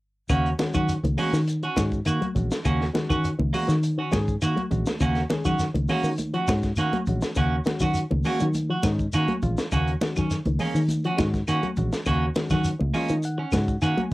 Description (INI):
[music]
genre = afrobeat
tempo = 102 BPM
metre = 4/4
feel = straight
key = Eb minor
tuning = A4 = 440 Hz
[part]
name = electric guitar with an envelope filter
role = arpeggios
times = 0.3-14.1 s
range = Db3 to Gb3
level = -30 LUFS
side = left 2 dB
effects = none
[part]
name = clean electric guitar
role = stabs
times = 0.3-14.0 s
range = Bb3 to Gb4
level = -27 LUFS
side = right 3 dB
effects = none
[part]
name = fingered electric bass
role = bass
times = 0.3-14.1 s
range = Bb1 to Eb3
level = -25 LUFS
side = equal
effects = none
[part]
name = compact cocktail drum kit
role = drums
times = 0.3-14.1 s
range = hi-hat, kick drum, snare drum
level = -30 LUFS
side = equal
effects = none
[part]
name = claves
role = percussion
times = 0.3-14.0 s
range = none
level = -36 LUFS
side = left 4 dB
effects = none
[part]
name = shekere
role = percussion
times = 0.3-14.1 s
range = none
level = -33 LUFS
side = equal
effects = none
[part]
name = barky reed electric piano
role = accompaniment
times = 0.6-14.1 s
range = Ab3 to Ab5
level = -32 LUFS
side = left 2 dB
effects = overdrive
[part]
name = congas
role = percussion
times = 0.6-14.1 s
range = none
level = -31 LUFS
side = right 2 dB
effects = none
[sound]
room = moderate booth ambience, RT60 0.2 s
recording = home recording on cassette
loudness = -22 LUFS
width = side -19 dB against mid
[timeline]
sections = 0.3-14.1 A section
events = reed electric piano fill 12.7-14.1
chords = 0.3 Ebm7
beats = | 0.30 0.89 1.48 2.07 | 2.66 3.25 3.84 4.42 | 5.01 5.60 6.19 6.78 | 7.37 7.96 8.54 9.13 | 9.72 10.30 10.89 11.48 | 12.06 12.65 13.24 13.82